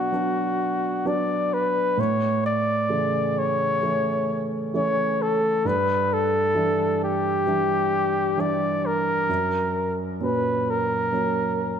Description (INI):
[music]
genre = pop ballad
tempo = 65 BPM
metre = 4/4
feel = straight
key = unclear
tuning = A4 = 440 Hz
[part]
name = warm flugelhorn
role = melody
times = 0.0-11.8 s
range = F#4 to D5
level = -23 LUFS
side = left 2 dB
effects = none
[part]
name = dark baby grand piano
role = accompaniment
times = 0.0-11.8 s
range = F#2 to D4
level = -26 LUFS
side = right 3 dB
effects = none
[sound]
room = moderate recital hall reverb, RT60 1.4 s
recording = none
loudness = -21 LUFS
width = side -7 dB against mid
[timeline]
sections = 0.0-11.8 A section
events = none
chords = 0.0 Bm; 2.0 A; 5.6 Em7/G; 9.3 F#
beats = 0.13 1.06 | 1.98 2.90 3.82 4.73 | 5.64 6.55 7.46 8.37 | 9.29 10.21 11.12